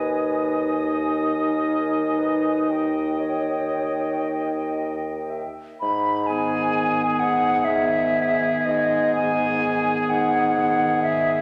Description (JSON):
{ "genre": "classical, slow romantic movement for wind quintet", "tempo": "36-44 BPM (dotted quarters)", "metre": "12/8", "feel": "rubato", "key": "G# minor", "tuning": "A4 = 440 Hz", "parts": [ { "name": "hollow concert flute", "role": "melody", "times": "0.0-11.4 s", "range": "D#5 to B5", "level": "-26 LUFS", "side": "equal", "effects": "none" }, { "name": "warm oboe", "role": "second line", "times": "0.0-11.4 s", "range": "G#4 to D#5", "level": "-30 LUFS", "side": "equal", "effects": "none" }, { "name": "mellow clarinet", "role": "accompaniment", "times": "0.0-11.4 s", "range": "B3 to E5", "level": "-32 LUFS", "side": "equal", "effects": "none" }, { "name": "warm French horn", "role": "accompaniment", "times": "0.0-11.4 s", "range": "D#3 to D#4", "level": "-30 LUFS", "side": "equal", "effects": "none" }, { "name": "warm bassoon", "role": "bass", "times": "0.0-11.3 s", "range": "D#2 to G#2", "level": "-30 LUFS", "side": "equal", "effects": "none" } ], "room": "wet concert hall reverb, RT60 1.8 s", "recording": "none", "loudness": "-22 LUFS", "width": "mono", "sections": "0.0-5.8 A section; 5.8-11.4 B section", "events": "none", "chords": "0.0 G#m/D#; 2.7 D#; 5.8 G#m" }